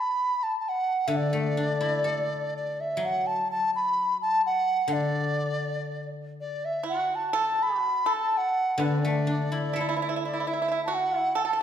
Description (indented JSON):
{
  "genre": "chinese traditional, Chinese chamber ensemble",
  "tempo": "63 BPM",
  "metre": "2/4",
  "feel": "rubato",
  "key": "D gong mode",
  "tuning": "A4 = 440 Hz",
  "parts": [
    { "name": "mellow large dizi", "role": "melody", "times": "0.0-11.6 s", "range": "D5 to B5", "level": "-26 LUFS", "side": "equal", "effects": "none" },
    { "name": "guzheng", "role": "accompaniment", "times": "1.1-11.6 s", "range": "D3 to A4", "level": "-29 LUFS", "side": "left 2 dB", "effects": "none" },
    { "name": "pipa", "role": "second line", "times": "6.8-11.6 s", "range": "D4 to A4", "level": "-30 LUFS", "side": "right 5 dB", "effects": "none" }
  ],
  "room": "wet recital hall reverb, RT60 1.6 s",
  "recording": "minimal, uncompressed stereo recording",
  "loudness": "-24 LUFS",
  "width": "side -9 dB against mid",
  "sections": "0.0-11.6 A section",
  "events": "none",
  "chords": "none"
}